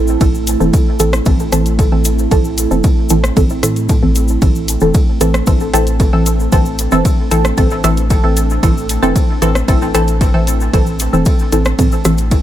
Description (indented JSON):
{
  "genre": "dub techno",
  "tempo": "114 BPM",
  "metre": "4/4",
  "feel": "straight",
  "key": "A minor",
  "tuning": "A4 = 440 Hz",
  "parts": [
    { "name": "warbly tape-like pad", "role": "sustained chords", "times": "0.0-12.4 s", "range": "A3 to E4", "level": "-22 LUFS", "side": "right 3 dB", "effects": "chorus, built-in reverb, sidechain pumping" },
    { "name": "filtered dub chord stab", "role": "stabs", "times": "0.0-12.4 s", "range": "E3 to A4", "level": "-16 LUFS", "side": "right 1 dB", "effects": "chorus, phaser, cassette tape, sidechain pumping, dub echo" },
    { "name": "soft dub sub bass", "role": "bass", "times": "0.0-12.4 s", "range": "E1 to A2", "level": "-17 LUFS", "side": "equal", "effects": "sidechain pumping" },
    { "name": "cabasa", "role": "percussion", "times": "0.1-12.4 s", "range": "none", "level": "-24 LUFS", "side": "left 4 dB", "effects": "none" },
    { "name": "deep house drum kit", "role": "drums", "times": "0.2-12.4 s", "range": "hi-hat, ride cymbal, rim click", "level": "-24 LUFS", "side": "equal", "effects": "overdrive" },
    { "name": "electronic kick drum", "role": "drums", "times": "0.2-12.4 s", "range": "none", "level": "-14 LUFS", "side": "equal", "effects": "overdrive" }
  ],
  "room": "little or no reverb",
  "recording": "none",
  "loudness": "-11 LUFS",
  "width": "side -12 dB against mid",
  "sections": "0.0-12.4 A section",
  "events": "none",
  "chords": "0.0 Am"
}